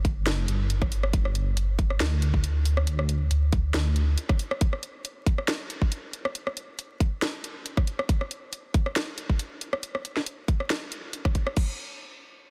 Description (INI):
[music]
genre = deep dubstep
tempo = 138 BPM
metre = 4/4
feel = swing 54% on 16ths, half-time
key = unclear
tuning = A4 = 440 Hz
[part]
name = dark detuned saw bass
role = bass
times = 0.0-4.2 s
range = G1 to D2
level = -26 LUFS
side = equal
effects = none
[part]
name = electronic kick drum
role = drums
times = 0.0-11.7 s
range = none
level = -26 LUFS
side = equal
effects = overdrive
[part]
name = garage drum kit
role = drums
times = 0.0-11.7 s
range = crash cymbal, hi-hat, rim click, snare drum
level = -33 LUFS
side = equal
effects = overdrive
[sound]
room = little or no reverb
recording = dense, heavily limited modern master, vinyl crackle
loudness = -27 LUFS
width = mono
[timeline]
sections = 0.0-11.6 A section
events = none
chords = none